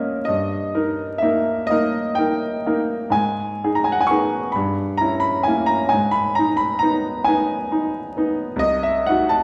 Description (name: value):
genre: classical, romantic nocturne for solo piano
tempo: 41-45 BPM (dotted quarters)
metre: 12/8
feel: rubato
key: G# minor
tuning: A4 = 440 Hz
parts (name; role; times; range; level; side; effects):
- clear grand piano; solo; 0.0-9.4 s; B#1 to C#6; -20 LUFS; equal; none
room: wet recital hall reverb, RT60 1.3 s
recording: recorded in a church or concert hall, vinyl crackle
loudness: -20 LUFS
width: mono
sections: 0.0-9.4 A section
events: none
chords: 0.3 D#/G; 3.2 G#m; 4.6 Gdim7; 5.9 G#m; 8.6 G#7/B# (rootless)